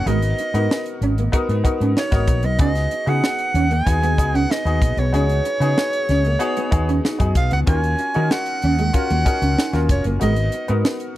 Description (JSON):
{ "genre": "polished 1980s jazz-funk pop", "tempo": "94 BPM", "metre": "4/4", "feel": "straight", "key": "unclear", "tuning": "A4 = 445 Hz", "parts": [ { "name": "breathy soprano saxophone", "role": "melody", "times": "0.0-10.8 s", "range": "Db5 to Ab5", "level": "-23 LUFS", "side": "right 2 dB", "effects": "none" }, { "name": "clear baby grand piano", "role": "accompaniment", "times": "0.0-11.2 s", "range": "Cb4 to Bb4", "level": "-25 LUFS", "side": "left 2 dB", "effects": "analog chorus" }, { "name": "mellow fretless electric bass", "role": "bass", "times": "0.0-10.8 s", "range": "F1 to Eb3", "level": "-20 LUFS", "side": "equal", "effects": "none" }, { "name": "electric guitar at the edge of break-up", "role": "riff", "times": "0.1-10.9 s", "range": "Ab3 to Eb4", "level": "-24 LUFS", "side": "right 3 dB", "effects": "ensemble chorus" }, { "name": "crisp fusion drum kit", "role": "drums", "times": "0.1-11.2 s", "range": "hi-hat, kick drum, snare drum", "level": "-21 LUFS", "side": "equal", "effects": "none" } ], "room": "small room ambience", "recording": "dry, close 1970s-style studio recording", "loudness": "-17 LUFS", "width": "side -15 dB against mid", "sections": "0.0-11.2 A section", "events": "none", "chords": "0.1 Abm7; 2.6 Db9sus4; 7.7 Ebm7; 10.2 Abm7" }